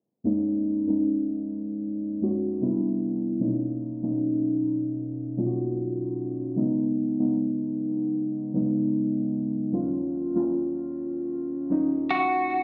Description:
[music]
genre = contemporary R&B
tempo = 76 BPM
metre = 4/4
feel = swing 58% on 16ths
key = F# major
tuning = A4 = 440 Hz
[part]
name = muted felt-like synth keys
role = accompaniment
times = 0.2-12.6 s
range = D#2 to F#4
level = -27 LUFS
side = equal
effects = chorus
[part]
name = clean electric guitar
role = melody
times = 12.1-12.6 s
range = F#4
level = -25 LUFS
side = equal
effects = none
[sound]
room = light reverb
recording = recorded on a phone in the room, studio reverb, compression, low-pass filter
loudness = -27 LUFS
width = mono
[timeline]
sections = 0.2-12.6 A section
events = filter sweep 0.2-12.6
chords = 0.2 F#69; 2.6 Cmaj7; 3.4 Bmaj7; 6.6 C#9sus4; 9.7 D#m7

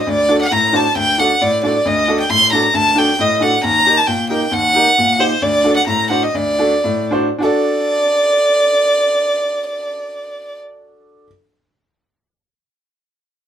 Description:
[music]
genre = klezmer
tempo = 101-134 BPM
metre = 2/4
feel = straight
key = D phrygian dominant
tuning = A4 = 440 Hz
[part]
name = warm violin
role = melody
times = 0.0-10.6 s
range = C5 to C6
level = -14 LUFS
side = equal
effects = none
[part]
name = clear upright piano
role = accompaniment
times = 0.1-11.3 s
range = D2 to C5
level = -18 LUFS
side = equal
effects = none
[sound]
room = moderate studio reverb, RT60 0.5 s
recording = band playing live in one room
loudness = -12 LUFS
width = side -9 dB against mid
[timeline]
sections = 0.1-7.4 A section; 7.4-9.8 B section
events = slowing down 5.4-7.4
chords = 0.1 D; 3.6 Eb; 5.4 D

